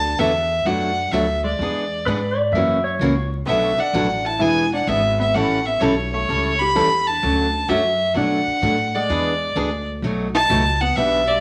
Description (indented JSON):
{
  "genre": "country, western swing",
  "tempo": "128 BPM",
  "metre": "4/4",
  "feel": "swing 68% on 8ths",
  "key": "unclear",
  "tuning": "A4 = 440 Hz",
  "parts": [
    { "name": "clear fiddle", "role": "melody", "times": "0.0-11.4 s", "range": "C#5 to B5", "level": "-22 LUFS", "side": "equal", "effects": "none" },
    { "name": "vintage hollow-body jazz guitar", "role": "second line", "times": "0.0-11.4 s", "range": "G3 to G4", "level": "-30 LUFS", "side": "equal", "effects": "none" },
    { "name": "upright bass", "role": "bass", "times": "0.0-11.4 s", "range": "E1 to B2", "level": "-28 LUFS", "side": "equal", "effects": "none" },
    { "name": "picked steel-string acoustic guitar", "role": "accompaniment", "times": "0.2-11.2 s", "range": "B2 to A4", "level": "-26 LUFS", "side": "equal", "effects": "none" },
    { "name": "pedal steel guitar", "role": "second line", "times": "2.1-3.3 s", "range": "B4 to E5", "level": "-24 LUFS", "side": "equal", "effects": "none" }
  ],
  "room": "wet studio reverb, RT60 0.8 s",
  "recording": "vinyl crackle",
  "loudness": "-20 LUFS",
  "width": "mono",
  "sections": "0.0-11.4 A section",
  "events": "none",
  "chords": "0.0 D6; 0.6 Bm7; 1.6 E7; 2.5 F#7; 3.5 Bm7; 4.4 E7; 5.3 A9; 7.2 Dmaj7; 8.2 Bm7; 9.1 E7; 10.0 B7"
}